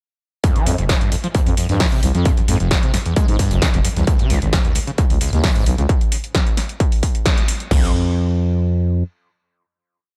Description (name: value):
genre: driving peak-time techno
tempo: 132 BPM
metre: 4/4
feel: straight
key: unclear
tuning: A4 = 441 Hz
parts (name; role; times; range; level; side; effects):
- screaming distorted acid line; riff; 0.4-7.9 s; Db2 to Ab3; -25 LUFS; equal; distortion, subtle chorus, sidechain pumping, analog delay
- open jazz drum kit; drums; 0.4-5.8 s; hi-hat, snare drum; -36 LUFS; equal; none
- punchy analog drum machine; drums; 0.4-7.7 s; hi-hat, snare drum; -26 LUFS; equal; none
- techno drum kit; drums; 0.4-7.8 s; crash cymbal, kick drum, toms; -20 LUFS; equal; distortion, overdrive
- growling FM bass; bass; 0.7-9.0 s; F1 to Ab2; -20 LUFS; equal; sidechain pumping
room: little or no reverb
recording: dry, gritty hardware recording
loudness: -18 LUFS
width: mono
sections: 0.4-7.7 drop; 7.7-10.2 final note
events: drop 0.4-7.7; band accent 7.3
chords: 0.4 N.C.; 4.1 Db5; 7.7 N.C.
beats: | 0.44 0.89 1.35 1.80 | 2.26 2.71 3.17 3.62 | 4.07 4.53 4.98 5.44 | 5.89 6.35 6.80 7.26 | 7.71 8.16 8.62